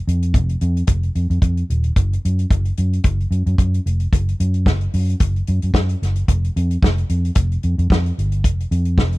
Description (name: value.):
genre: disco.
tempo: 111 BPM.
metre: 4/4.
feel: swing 56% on 16ths.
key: unclear.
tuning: A4 = 440 Hz.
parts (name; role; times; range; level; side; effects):
vintage muted fingered electric bass; bass; 0.1-9.2 s; Eb1 to Gb2; -18 LUFS; equal; none.
warm soul drum kit; drums; 0.1-9.2 s; hi-hat, kick drum, snare drum; -18 LUFS; equal; none.
room: little or no reverb.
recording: none.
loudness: -16 LUFS.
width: side -20 dB against mid.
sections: 0.0-9.2 A section.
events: none.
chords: none.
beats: 0.35 0.89 1.43 | 1.97 2.50 3.04 3.58 | 4.12 4.66 5.20 5.74 | 6.28 6.82 7.36 7.90 | 8.44 8.98.